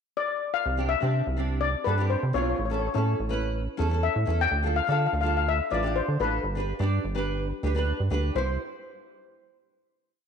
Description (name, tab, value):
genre	calypso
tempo	125 BPM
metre	4/4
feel	straight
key	C major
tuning	A4 = 440 Hz
part	steel pan	melody	0.2-8.6 s	B4 to G5	-28 LUFS	left 8 dB	slapback echo
part	rubbery square bass	bass	0.7-8.6 s	G1 to D3	-27 LUFS	right 2 dB	none
part	nylon-string guitar	accompaniment	0.8-8.6 s	C4 to D5	-31 LUFS	right 1 dB	double-tracked left and right
room	moderate echo chamber reverb, RT60 1.7 s, small room ambience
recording	none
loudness	-24 LUFS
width	side -7 dB against mid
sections	0.0-0.7 pickup bar; 0.7-8.4 verse; 8.4-10.3 final chord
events	none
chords	0.0 N.C.; 0.7 Csus2; 2.6 A; 4.5 Dm; 6.4 G; 8.4 C